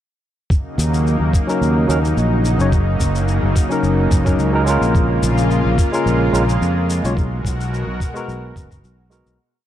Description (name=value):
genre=sunset chillout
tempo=108 BPM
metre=4/4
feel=swing 53% on 16ths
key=G# dorian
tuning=A4 = 439 Hz
part: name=lush unison pad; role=sustained chords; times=0.5-9.4 s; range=B2 to A#4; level=-22 LUFS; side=equal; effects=chorus
part: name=electronic kick drum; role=drums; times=0.5-8.8 s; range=none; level=-17 LUFS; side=equal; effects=none
part: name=shaker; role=drums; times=0.5-9.4 s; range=none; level=-32 LUFS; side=left 5 dB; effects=none
part: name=fretless electric bass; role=bass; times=0.8-9.4 s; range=F#1 to E#2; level=-18 LUFS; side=equal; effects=tube saturation
part: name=barky tine electric piano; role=accompaniment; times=1.5-9.4 s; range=F#3 to C#5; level=-20 LUFS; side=left 1 dB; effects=overdrive, auto-pan, digital delay
room=light reverb, digital ambience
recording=dark, warm production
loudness=-15 LUFS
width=side -11 dB against mid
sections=0.5-9.4 groove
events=fade-out 6.4-9.4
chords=0.5 D#m7; 2.7 F#6; 4.9 A#m7; 7.2 G#m9/B